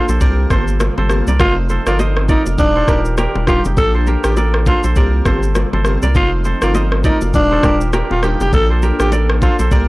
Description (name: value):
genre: afrobeats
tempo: 101 BPM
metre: 4/4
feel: swing 58% on 16ths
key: Bb major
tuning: A4 = 445 Hz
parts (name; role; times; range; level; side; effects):
- raspy alto saxophone; melody; 0.0-9.6 s; D4 to A4; -19 LUFS; equal; tape echo
- glassy digital keys; accompaniment; 0.0-9.9 s; G3 to A4; -24 LUFS; equal; chorus
- airy breathy pad; sustained chords; 0.0-9.9 s; C3 to A4; -28 LUFS; left 1 dB; none
- kora; riff; 0.0-9.9 s; Eb4 to Eb5; -23 LUFS; right 2 dB; tape echo
- saturated sub bass; bass; 0.1-9.9 s; Eb1 to C2; -16 LUFS; equal; none
- afro-pop drum kit; drums; 0.1-9.9 s; kick drum, rim click, shaker; -17 LUFS; equal; none
- bongos and congas; percussion; 0.1-9.9 s; none; -24 LUFS; left 2 dB; none
room: little or no reverb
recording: dry, gritty hardware recording, transformer saturation, cassette tape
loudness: -12 LUFS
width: side -20 dB against mid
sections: 0.0-9.9 A section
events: none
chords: 0.2 C7sus4; 1.4 F7; 2.6 Ebmaj9; 3.8 Bbmaj7; 5.0 C7sus4; 6.1 F7; 7.3 Ebmaj9; 8.5 Bbmaj7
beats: 0.21 0.80 | 1.40 1.99 2.58 3.18 | 3.77 4.37 4.96 5.55 | 6.15 6.74 7.34 7.93 | 8.53 9.12 9.71